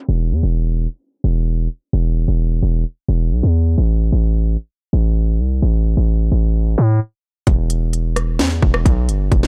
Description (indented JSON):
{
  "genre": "hip hop, trap",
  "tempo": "130 BPM",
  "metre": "4/4",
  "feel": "half-time",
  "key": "E minor",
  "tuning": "A4 = 435 Hz",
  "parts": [
    { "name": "distorted 808-style bass", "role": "bass", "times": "0.1-9.5 s", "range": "E1 to A2", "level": "-18 LUFS", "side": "equal", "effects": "distortion" },
    { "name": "trap drum kit", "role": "drums", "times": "7.5-9.5 s", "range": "hi-hat, kick drum, rim click, snare drum", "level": "-18 LUFS", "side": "equal", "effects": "none" }
  ],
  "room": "little or no reverb",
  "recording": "dark, warm production, low-pass filter",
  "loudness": "-18 LUFS",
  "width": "mono",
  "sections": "0.1-7.5 A section; 7.5-9.5 B section",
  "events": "filter sweep 0.1-7.5; break 7.0-7.5",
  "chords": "none",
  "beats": "| 0.09 0.55 1.01 1.47 | 1.93 2.39 2.85 3.32 | 3.78 4.24 4.70 5.16 | 5.62 6.09 6.55 7.01 | 7.47 7.93 8.39 8.86 | 9.32"
}